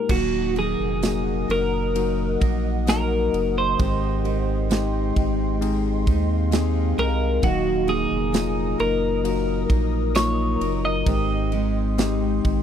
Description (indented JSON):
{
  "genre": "pop ballad",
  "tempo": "66 BPM",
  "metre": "4/4",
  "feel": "straight",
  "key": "unclear",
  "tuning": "A4 = 440 Hz",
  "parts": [
    { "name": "twelve-string electric guitar", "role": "melody", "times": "0.0-12.6 s", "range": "Gb4 to Eb5", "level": "-25 LUFS", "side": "right 1 dB", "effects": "none" },
    { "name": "bell-like tine electric piano", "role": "accompaniment", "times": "0.0-12.6 s", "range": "Ab2 to G5", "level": "-26 LUFS", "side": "left 10 dB", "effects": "none" },
    { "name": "glassy FM pad", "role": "sustained chords", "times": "0.5-12.6 s", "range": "Ab3 to Eb6", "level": "-32 LUFS", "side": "left 2 dB", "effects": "ensemble chorus, built-in reverb, phaser" },
    { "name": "picked steel-string acoustic guitar", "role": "arpeggios", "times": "0.1-12.6 s", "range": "Eb3 to Bb4", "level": "-31 LUFS", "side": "right 16 dB", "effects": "none" },
    { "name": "warm sub bass", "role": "bass", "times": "0.1-12.6 s", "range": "Eb1 to Eb2", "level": "-25 LUFS", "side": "right 1 dB", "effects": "none" },
    { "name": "modern studio drum kit", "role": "drums", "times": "0.1-12.6 s", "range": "crash cymbal, kick drum, ride cymbal, snare drum", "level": "-24 LUFS", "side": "right 1 dB", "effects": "none" },
    { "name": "tambourine", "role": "percussion", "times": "1.0-12.2 s", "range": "none", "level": "-36 LUFS", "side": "right 20 dB", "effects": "none" }
  ],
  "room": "small room reverb",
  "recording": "dry, close 1970s-style studio recording",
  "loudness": "-20 LUFS",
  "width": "side -9 dB against mid",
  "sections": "0.1-12.6 A section",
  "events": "none",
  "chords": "0.1 Ebm; 3.8 Abmaj7; 7.4 Ebm; 11.1 Abmaj7",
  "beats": "| 0.10 1.03 1.96 2.88 | 3.80 4.71 5.62 6.53 | 7.43 8.34 9.25 10.15 | 11.07 11.98"
}